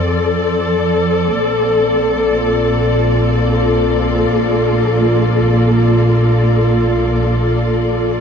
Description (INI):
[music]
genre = ambient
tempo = free time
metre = none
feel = none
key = unclear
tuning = A4 = 440 Hz
[part]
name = dark studio string section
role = sustained chords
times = 0.0-8.2 s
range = F3 to D5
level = -14 LUFS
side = left 1 dB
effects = shimmer reverb
[part]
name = muted studio double bass section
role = bass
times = 0.0-8.2 s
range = Bb1 to F2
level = -17 LUFS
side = equal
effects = none
[sound]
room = wet cathedral reverb, RT60 6.5 s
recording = dark, warm production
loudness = -12 LUFS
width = side -7 dB against mid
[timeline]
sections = 0.0-8.2 A section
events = none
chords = 0.0 F6; 1.4 Bbmaj7